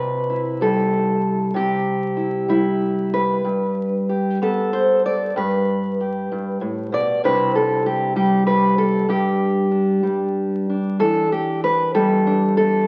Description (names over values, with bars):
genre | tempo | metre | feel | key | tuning
folk, solo fingerstyle acoustic guitar | 64 BPM (dotted quarters) | 6/8 | rubato | G major | A4 = 438 Hz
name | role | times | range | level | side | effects
fingerpicked steel-string acoustic guitar | solo | 0.0-12.9 s | G2 to D5 | -20 LUFS | equal | none
room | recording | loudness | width
wet large studio reverb, RT60 1.3 s | very old 78 rpm record, vinyl crackle | -20 LUFS | mono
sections
0.0-11.0 A section; 11.0-12.9 B section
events
none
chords
0.0 C; 3.4 Gadd9; 7.2 Cadd9; 9.1 G5; 11.0 Em7